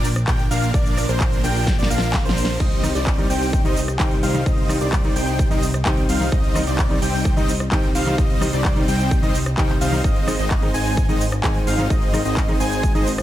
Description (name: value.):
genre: EDM, festival progressive house.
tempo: 129 BPM.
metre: 4/4.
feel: straight.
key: C minor.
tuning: A4 = 440 Hz.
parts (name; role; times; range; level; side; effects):
wide unison lead; arpeggios; 0.0-13.1 s; C5 to Ab5; -28 LUFS; equal; sidechain pumping, tape echo.
supersaw chords; riff; 0.0-13.1 s; F3 to Ab5; -25 LUFS; equal; sidechain pumping, tape echo.
fat analog bass; bass; 0.0-13.2 s; Ab1 to C2; -24 LUFS; equal; sidechain pumping.
big-room dance drum kit; drums; 0.0-13.2 s; crash cymbal, handclaps, hi-hat, rim click, shaker, snare drum; -27 LUFS; equal; none.
electronic kick drum; drums; 0.3-12.9 s; none; -20 LUFS; equal; none.
warm concert grand piano; accompaniment; 2.8-13.0 s; Eb3 to Eb4; -26 LUFS; equal; sidechain pumping, tape echo.
room: digital ambience.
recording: none.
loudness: -17 LUFS.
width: side -13 dB against mid.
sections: 0.0-13.2 A section.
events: drum fill 1.7-2.6.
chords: 0.0 Bb; 2.6 Cm; 10.0 Ab.